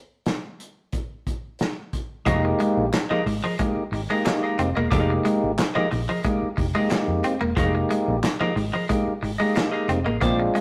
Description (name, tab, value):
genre	funk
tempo	90 BPM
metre	4/4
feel	straight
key	F dorian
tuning	A4 = 441 Hz
part	warm soul drum kit	drums	0.3-10.6 s	handclaps, hi-hat, kick drum, snare drum	-29 LUFS	equal	none
part	semi-hollow electric guitar	accompaniment	2.3-10.4 s	Ab4 to Eb5	-31 LUFS	equal	none
part	clean electric guitar	riff	2.3-10.6 s	F3 to C4	-29 LUFS	equal	none
part	percussive tonewheel organ	stabs	2.3-10.6 s	G3 to G4	-28 LUFS	equal	overdrive, slow rotary speaker
part	vintage muted fingered electric bass	bass	2.3-10.5 s	E1 to F2	-30 LUFS	equal	none
room	wet stone room reverb, RT60 1.0 s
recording	rough rehearsal-room recording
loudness	-24 LUFS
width	mono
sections	0.0-2.3 A section; 2.3-10.6 B section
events	none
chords	0.0 N.C.; 2.3 Fm11